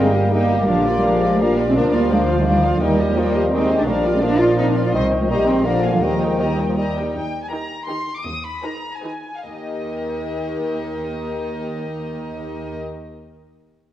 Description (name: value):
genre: quick classical-period movement for symphony orchestra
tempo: 139-172 BPM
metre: 3/4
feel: straight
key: Eb major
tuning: A4 = 445 Hz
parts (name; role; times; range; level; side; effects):
- warm studio violin section; melody; 0.0-12.8 s; D5 to Eb6; -31 LUFS; left 3 dB; none
- concert flute; second line; 0.0-7.0 s; D5 to G5; -26 LUFS; left 1 dB; none
- warm clarinet; second line; 0.0-6.9 s; G4 to C5; -27 LUFS; equal; none
- warm studio violin section; second line; 0.0-12.8 s; G4 to F5; -30 LUFS; left 3 dB; none
- rich studio viola section; accompaniment; 0.0-12.8 s; Eb3 to G4; -28 LUFS; equal; none
- warm bassoon; accompaniment; 0.0-7.1 s; D3 to Bb3; -23 LUFS; right 1 dB; none
- warm French horn section; sustained chords; 0.0-6.8 s; D3 to D4; -24 LUFS; left 3 dB; none
- dark studio cello section; bass; 0.0-12.8 s; Eb2 to F4; -23 LUFS; right 1 dB; none
- rich studio double bass section; bass; 0.0-6.9 s; G1 to Eb2; -23 LUFS; right 2 dB; none
room: wet scoring stage reverb, RT60 1.6 s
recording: worn, warbling old tape, cassette tape, warbly pitch drift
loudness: -17 LUFS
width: side -12 dB against mid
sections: 0.0-7.1 A section; 7.1-9.5 B section; 9.5-12.0 C section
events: slowing down 6.6-9.5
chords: 0.0 Eb/G; 0.7 Bb; 1.8 Bb/D; 2.8 Eb; 3.9 Bb; 4.9 Cm; 5.3 Eb/Bb; 5.6 Bb7; 6.0 Eb